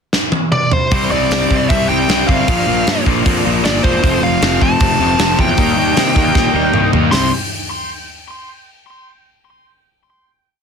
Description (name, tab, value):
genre	punk rock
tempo	155 BPM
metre	4/4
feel	straight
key	unclear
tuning	A4 = 440 Hz
part	big rock drum kit	drums	0.1-7.2 s	hi-hat, kick drum, snare drum, toms	-17 LUFS	equal	none
part	bluesy overdriven lead guitar	melody	0.5-7.3 s	C5 to C6	-18 LUFS	equal	distortion, digital delay
part	crunchy overdriven guitar	riff	0.9-7.3 s	F2 to Eb4	-18 LUFS	left 16 dB	none
part	distorted electric guitar	riff	0.9-7.3 s	F2 to E4	-19 LUFS	right 15 dB	distortion
part	fuzz picked electric bass	bass	0.9-7.3 s	E1 to C3	-20 LUFS	right 1 dB	overdrive
room	little or no reverb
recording	dense, heavily limited modern master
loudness	-12 LUFS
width	side -6 dB against mid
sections	0.0-0.9 pickup bar; 0.9-7.1 riff; 7.1-8.7 final chord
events	drum fill 0.1-0.9, 6.4-7.1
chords	0.0 N.C.; 0.9 C; 2.5 Bb; 4.0 F; 5.6 Eb; 7.1 C5